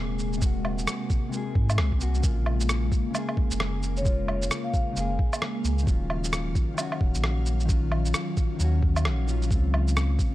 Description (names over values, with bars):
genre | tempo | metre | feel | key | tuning
future garage | 132 BPM | 4/4 | swing 62% on 16ths | Eb dorian | A4 = 439 Hz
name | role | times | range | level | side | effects
mellow electric guitar | accompaniment | 0.0-10.3 s | C3 to Ab4 | -33 LUFS | left 3 dB | vintage 12-bit sampler grit, sidechain pumping, analog delay
ethereal airy pad | sustained chords | 0.0-10.3 s | C3 to F5 | -34 LUFS | left 1 dB | ensemble chorus, built-in reverb, phaser, sidechain pumping
warm sub bass | bass | 0.0-10.2 s | Eb1 to Ab2 | -26 LUFS | equal | sidechain pumping
electronic shaker, woodblock and rim click | drums | 0.2-10.3 s | none | -31 LUFS | right 1 dB | studio reverb
electronic kick drum | drums | 0.4-10.3 s | none | -25 LUFS | equal | studio reverb
vibraphone with medium mallets | melody | 4.0-5.1 s | Db5 to F5 | -33 LUFS | equal | analog delay
room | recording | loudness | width
digital ambience | none | -23 LUFS | side -15 dB against mid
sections
0.0-10.3 A section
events
none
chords
0.0 Ab9; 2.2 Bbm7; 5.9 Ebm9; 9.5 Dbmaj7